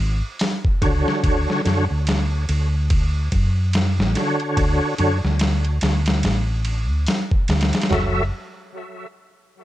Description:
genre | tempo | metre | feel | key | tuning
trip hop | 72 BPM | 4/4 | swing 59% on 16ths | unclear | A4 = 440 Hz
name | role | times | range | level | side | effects
hollow-body short-scale fingered electric bass | bass | 0.0-8.3 s | F#1 to F#2 | -20 LUFS | equal | none
dusty soul sampler-style drum kit | drums | 0.4-8.1 s | hi-hat, kick drum, ride cymbal, snare drum, toms | -22 LUFS | equal | overdrive, vintage 12-bit sampler grit
bright tonewheel organ | accompaniment | 0.8-8.2 s | D3 to E5 | -24 LUFS | equal | chorus vibrato, fast rotary speaker, tremolo, tape echo
room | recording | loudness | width
little or no reverb | echo-heavy mix | -18 LUFS | side -14 dB against mid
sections
0.0-7.9 A section; 7.9-9.6 B section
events
none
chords
0.0 C#5; 1.2 Dmaj7; 7.9 F#m7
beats
0.40 | 1.23 2.07 2.90 3.73 | 4.57 5.40 6.23 7.07 | 7.90

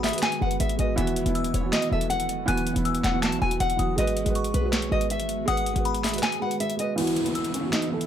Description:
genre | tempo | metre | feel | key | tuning
hip hop, trap | 160 BPM | 4/4 | half-time | E major | A4 = 439 Hz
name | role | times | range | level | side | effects
nylon-string guitar | melody | 0.0-8.1 s | C#4 to A5 | -28 LUFS | left 1 dB | low-pass filter
delicate synth tine bell | second line | 0.0-8.1 s | B5 to F#6 | -35 LUFS | left 5 dB | chorus, phaser, digital delay
felt-muted upright piano | accompaniment | 0.0-8.1 s | E3 to B4 | -29 LUFS | right 4 dB | low-pass filter
ethereal airy pad | sustained chords | 0.0-6.9 s | D#3 to F#4 | -34 LUFS | equal | ensemble chorus, built-in reverb
short 808-style bass | bass | 0.0-6.2 s | E1 to B1 | -28 LUFS | equal | none
booming analog drum machine | drums | 0.0-8.1 s | crash cymbal, handclaps, hi-hat, snare drum | -30 LUFS | equal | none
downlifter | sound effects | 7.0-8.1 s | none | -34 LUFS | equal | none
room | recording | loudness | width
light reverb | none | -22 LUFS | side -9 dB against mid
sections
0.0-7.0 A section; 7.0-8.1 B section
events
kick muted 6.2-7.0, 7.0-8.1; filter sweep 7.0-8.1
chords
0.0 G#m7; 1.0 Esus2; 4.0 G#m7; 7.0 Esus2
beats
0.23 0.60 | 0.98 1.35 1.73 2.10 | 2.48 2.85 3.23 3.60 | 3.98 4.35 4.73 5.10 | 5.48 5.85 6.23 6.60 | 6.98 7.35 7.73

